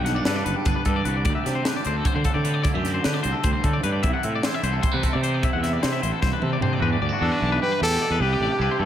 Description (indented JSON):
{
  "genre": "math rock and midwest emo",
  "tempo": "301 BPM (eighths)",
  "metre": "7/8",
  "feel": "straight",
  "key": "unclear",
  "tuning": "A4 = 440 Hz",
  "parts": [
    { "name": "twangy electric guitar", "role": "accompaniment", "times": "0.0-8.9 s", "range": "D2 to A4", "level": "-30 LUFS", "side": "right 8 dB", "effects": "spring reverb" },
    { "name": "twangy electric guitar", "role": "arpeggios", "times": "0.0-8.9 s", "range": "F#4 to F#5", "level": "-27 LUFS", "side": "left 6 dB", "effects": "spring reverb, slapback echo, analog delay" },
    { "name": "fuzz fingered electric bass", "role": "bass", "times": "0.0-8.9 s", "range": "F#1 to D3", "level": "-25 LUFS", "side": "equal", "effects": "overdrive" },
    { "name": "crisp fusion drum kit", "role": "drums", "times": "0.1-6.7 s", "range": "hi-hat, kick drum, snare drum, toms", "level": "-25 LUFS", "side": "equal", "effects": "none" },
    { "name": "clear trumpet", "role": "melody", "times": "7.2-8.9 s", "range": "D4 to B4", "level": "-23 LUFS", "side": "equal", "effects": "none" }
  ],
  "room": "moderate recital hall reverb, RT60 1.4 s, small room reverb",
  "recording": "big arena sound",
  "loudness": "-20 LUFS",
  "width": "side -10 dB against mid",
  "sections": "0.0-6.8 A section; 6.8-8.9 B section",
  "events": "drum fill 6.2-6.8",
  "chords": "0.0 Gmaj7; 1.2 D7sus4; 4.0 C6; 6.8 Em9; 8.2 C69"
}